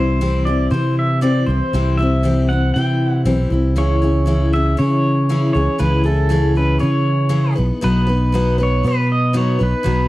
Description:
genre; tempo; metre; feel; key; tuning
folk rock and heartland rock; 118 BPM; 4/4; straight; unclear; A4 = 440 Hz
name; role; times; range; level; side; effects
pedal steel guitar; melody; 0.0-10.1 s; A4 to G5; -22 LUFS; right 1 dB; slapback echo
picked steel-string acoustic guitar; accompaniment; 0.0-10.1 s; B2 to B4; -20 LUFS; left 2 dB; none
fingered electric bass; bass; 0.0-10.1 s; B1 to C#3; -17 LUFS; equal; none
room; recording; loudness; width
little or no reverb; dry, close 1970s-style studio recording; -14 LUFS; side -17 dB against mid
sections
0.0-10.1 A section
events
none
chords
0.0 C; 3.8 C#m; 7.6 B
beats
0.21 0.72 1.23 | 1.73 2.24 2.75 3.26 | 3.77 4.27 4.78 5.29 | 5.80 6.30 6.81 7.32 | 7.83 8.34 8.84 9.35 | 9.86

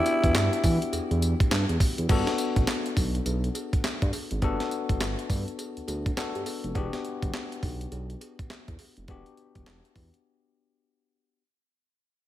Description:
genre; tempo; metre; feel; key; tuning
R&B, new jack swing; 103 BPM; 4/4; swing 62% on 16ths; E minor; A4 = 442 Hz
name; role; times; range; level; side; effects
growling alto saxophone; melody; 0.0-1.5 s; E4; -28 LUFS; right 1 dB; tape echo
bell-like tine electric piano; accompaniment; 0.0-11.4 s; B3 to A4; -32 LUFS; left 5 dB; none
breakbeat sampler-style drum kit; drums; 0.1-10.2 s; crash cymbal, handclaps, hi-hat, kick drum, snare drum, tambourine; -28 LUFS; equal; gated reverb
smooth synth bass; bass; 0.2-10.1 s; E1 to E3; -29 LUFS; right 1 dB; none
cowbell; percussion; 0.3-9.8 s; none; -44 LUFS; right 7 dB; none
room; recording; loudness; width
little or no reverb; none; -25 LUFS; side -13 dB against mid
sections
0.0-2.1 A section; 2.1-11.4 B section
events
fade-out 2.1-11.4; break 10.2-11.4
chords
0.0 Em9; 2.1 Gmaj9; 6.8 Em9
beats
0.34 0.93 1.51 | 2.09 2.67 3.26 3.84 | 4.42 5.00 5.59 6.17 | 6.75 7.34 7.92 8.50 | 9.08 9.67 10.25 10.83

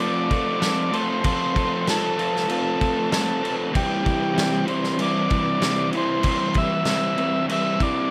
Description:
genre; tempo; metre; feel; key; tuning
garage rock duo or trio; 96 BPM; 4/4; straight; unclear; A4 = 441 Hz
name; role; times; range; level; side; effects
overdriven combo organ; melody; 0.0-8.1 s; G4 to E5; -27 LUFS; equal; none
crunchy overdriven guitar; riff; 0.0-8.1 s; C3 to A4; -26 LUFS; equal; none
vintage drum kit; drums; 0.3-7.9 s; crash cymbal, kick drum, snare drum; -29 LUFS; equal; none
room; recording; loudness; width
light reverb; none; -22 LUFS; mono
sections
0.0-8.1 A section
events
none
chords
0.0 F; 3.7 C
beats
0.00 0.63 | 1.25 1.88 2.50 3.12 | 3.75 4.37 5.00 5.62 | 6.24 6.87 7.49

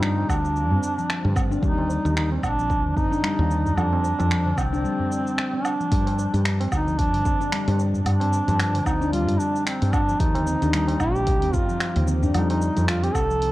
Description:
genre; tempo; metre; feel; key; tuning
organic downtempo; 112 BPM; 4/4; swing 57% on 16ths; G minor; A4 = 439 Hz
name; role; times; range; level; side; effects
mellow duduk; melody; 0.0-13.5 s; C4 to A4; -25 LUFS; right 1 dB; tape echo, shimmer reverb
handpan; arpeggios; 0.0-13.5 s; D3 to D4; -27 LUFS; left 1 dB; shimmer reverb
woody fretless electric bass; bass; 0.0-13.5 s; Bb1 to G2; -23 LUFS; equal; sidechain pumping
deep house drum kit; drums; 0.0-13.5 s; cabasa, finger snaps, hi-hat, woodblock; -30 LUFS; right 1 dB; none
tabla; percussion; 0.2-13.4 s; none; -32 LUFS; right 1 dB; none
electronic kick drum; drums; 0.3-13.3 s; none; -25 LUFS; equal; none
room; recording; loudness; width
light reverb, studio reverb; worn, warbling old tape, cassette tape, warbly pitch drift; -20 LUFS; side -17 dB against mid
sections
0.0-13.5 A section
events
break 4.8-5.9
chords
0.0 G7(no3); 1.6 Ebmaj7(no3); 3.8 F5; 5.9 G5; 10.2 Ebmaj7; 12.3 F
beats
0.02 0.56 1.09 | 1.63 2.17 2.70 3.24 | 3.77 4.31 4.84 5.38 | 5.92 6.45 6.99 7.52 | 8.06 8.59 9.13 9.66 | 10.20 10.74 11.27 11.81 | 12.34 12.88 13.41

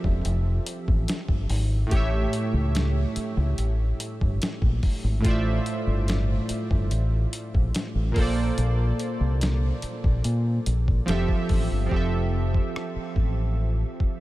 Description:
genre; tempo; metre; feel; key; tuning
contemporary R&B; 72 BPM; 4/4; straight; F major; A4 = 440 Hz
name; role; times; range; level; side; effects
warm analog keys; accompaniment; 0.0-14.2 s; A2 to E5; -29 LUFS; right 1 dB; chorus
deep dub fingered electric bass; bass; 0.0-14.0 s; E1 to Bb2; -24 LUFS; equal; none
dusty soul sampler-style drum kit; drums; 0.0-14.2 s; hi-hat, kick drum, rim click, snare drum; -27 LUFS; equal; none
room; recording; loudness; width
light reverb, digital ambience; none; -22 LUFS; side -17 dB against mid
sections
0.0-11.9 A section; 11.9-14.2 B section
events
none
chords
0.0 Fmaj9; 1.9 A7; 5.2 Dm9; 8.2 Bbmaj9; 11.1 Fmaj7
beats
0.25 1.08 | 1.92 2.75 3.58 4.42 | 5.25 6.08 6.92 7.75 | 8.58 9.41 10.25 11.08 | 11.91 12.75 13.58

